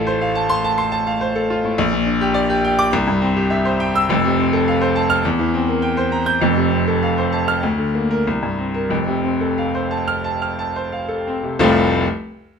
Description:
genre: classical, virtuoso piano study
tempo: 88-106 BPM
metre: 4/4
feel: rubato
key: F major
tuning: A4 = 440 Hz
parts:
  - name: clear grand piano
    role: solo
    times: 0.0-12.1 s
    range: F1 to G6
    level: -16 LUFS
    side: equal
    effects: none
room: light reverb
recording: minimal, uncompressed stereo recording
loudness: -16 LUFS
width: side -6 dB against mid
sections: 0.0-11.6 A section; 11.6-12.6 B section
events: slowing down 5.2-11.6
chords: 0.0 F/A; 1.8 Gm/Bb; 2.9 C; 4.1 F; 5.2 C7/E; 6.4 F; 7.6 Bb/D; 8.3 C5; 8.9 F

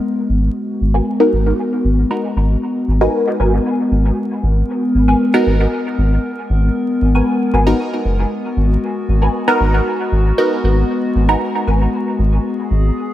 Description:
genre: dub techno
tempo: 116 BPM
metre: 4/4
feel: straight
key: G# minor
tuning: A4 = 441 Hz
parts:
  - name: warbly tape-like pad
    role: sustained chords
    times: 0.0-13.1 s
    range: G#3 to A#4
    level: -19 LUFS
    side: left 1 dB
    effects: chorus, built-in reverb
  - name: round analog bass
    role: bass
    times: 0.3-12.9 s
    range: F#1 to G#1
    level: -14 LUFS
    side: equal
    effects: none
  - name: filtered dub chord stab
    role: riff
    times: 0.9-11.8 s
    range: F#4 to G#5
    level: -26 LUFS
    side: equal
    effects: phaser, ensemble chorus, dub echo
  - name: filtered dub chord stab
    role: stabs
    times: 1.2-11.6 s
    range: B3 to A#4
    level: -18 LUFS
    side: right 1 dB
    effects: phaser, dub echo
room: light reverb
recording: vinyl crackle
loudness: -14 LUFS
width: side -13 dB against mid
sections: 0.0-13.1 A section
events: none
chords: 0.0 G#m9

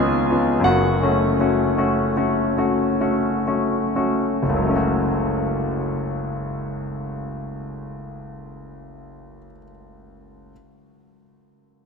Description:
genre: classical, romantic character piece for solo piano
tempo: 40-59 BPM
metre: 3/4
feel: rubato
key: F# minor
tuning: A4 = 437 Hz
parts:
  - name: clear concert grand piano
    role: solo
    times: 0.0-10.5 s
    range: F#1 to G#5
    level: -19 LUFS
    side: left 1 dB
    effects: none
room: wet cathedral reverb, RT60 5.8 s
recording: in a vast, echoing space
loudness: -19 LUFS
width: side -5 dB against mid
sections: 0.0-4.4 A section; 4.4-8.3 B section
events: slowing down 0.0-4.4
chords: 0.0 C#7; 0.7 F#m

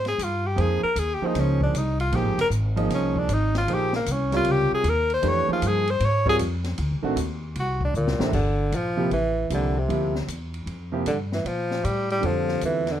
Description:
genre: modal jazz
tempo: 155 BPM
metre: 4/4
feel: swing 66% on 8ths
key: Bb dorian, G dorian from 8.3 s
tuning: A4 = 440 Hz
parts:
  - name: clear tenor saxophone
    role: melody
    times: 0.0-13.0 s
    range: Bb2 to Db5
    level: -24 LUFS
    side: left 1 dB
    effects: none
  - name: upright bass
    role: bass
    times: 0.0-13.0 s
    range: F1 to Bb2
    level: -26 LUFS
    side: equal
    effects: none
  - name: open jazz drum kit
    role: drums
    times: 0.0-12.9 s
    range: crash cymbal, hi-hat, kick drum, ride cymbal, snare drum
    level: -34 LUFS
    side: left 2 dB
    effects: none
  - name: clear concert grand piano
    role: accompaniment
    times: 0.6-12.8 s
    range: C3 to Eb5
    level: -27 LUFS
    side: right 2 dB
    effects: none
room: light reverb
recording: dark, warm production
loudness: -21 LUFS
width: side -10 dB against mid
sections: 0.0-8.3 A section; 8.3-13.0 B section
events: tenor saxophone solo 0.0-8.3; drum fill 7.9-8.3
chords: 0.0 Bbm9; 6.8 D7(no3); 8.3 Gm9

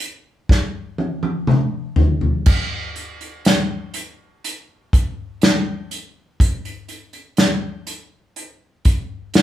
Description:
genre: pop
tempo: 61 BPM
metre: 4/4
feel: straight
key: none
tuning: none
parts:
  - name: unplugged drum kit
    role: drums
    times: 0.0-9.4 s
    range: crash cymbal, hi-hat, kick drum, snare drum, toms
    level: -16 LUFS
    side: equal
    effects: none
room: moderate studio reverb, RT60 0.6 s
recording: band playing live in one room, studio ambience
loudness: -17 LUFS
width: side -12 dB against mid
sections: 0.0-2.5 A section; 2.5-9.4 B section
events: drum fill 0.5-2.5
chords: none

